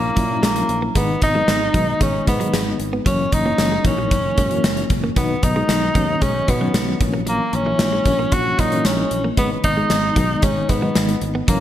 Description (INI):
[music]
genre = 1980s-style pop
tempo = 114 BPM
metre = 4/4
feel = straight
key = G# minor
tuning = A4 = 438 Hz
[part]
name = warm tenor saxophone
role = melody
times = 0.0-11.6 s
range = A#3 to F#4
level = -21 LUFS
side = equal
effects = none
[part]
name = FM electric piano with tremolo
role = accompaniment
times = 0.0-11.6 s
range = D#3 to E4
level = -23 LUFS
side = left 2 dB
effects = none
[part]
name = sustaining fretless electric bass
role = bass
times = 0.0-11.6 s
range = F#1 to B2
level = -26 LUFS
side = equal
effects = none
[part]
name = direct-recorded clean electric guitar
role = riff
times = 0.2-11.6 s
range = E3 to B3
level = -28 LUFS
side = right 3 dB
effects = analog chorus
[part]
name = gated 80s drum kit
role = drums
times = 0.2-11.6 s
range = hi-hat, kick drum, snare drum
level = -20 LUFS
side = equal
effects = gated reverb
[sound]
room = moderate lush hall reverb, RT60 1.9 s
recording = bright 1980s-style digital production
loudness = -16 LUFS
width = side -11 dB against mid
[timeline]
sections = 0.0-11.6 A section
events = none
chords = 0.0 F#7/A#; 1.0 G#m; 3.1 F#7; 5.2 B; 7.0 F#7/A#; 9.4 G#m